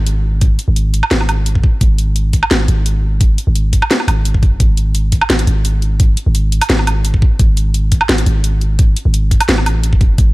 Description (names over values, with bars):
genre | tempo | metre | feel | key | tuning
half-time drum and bass | 172 BPM | 4/4 | half-time | unclear | A4 = 439 Hz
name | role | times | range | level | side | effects
long sustained 808-style bass | bass | 0.0-10.3 s | F#1 to A1 | -14 LUFS | equal | none
drum and bass drum kit | drums | 0.1-10.3 s | hi-hat, snare drum, woodblock | -17 LUFS | right 1 dB | none
electronic kick drum | drums | 0.4-10.3 s | none | -12 LUFS | equal | none
room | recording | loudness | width
little or no reverb | none | -11 LUFS | side -20 dB against mid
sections
0.0-10.3 A section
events
none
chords
none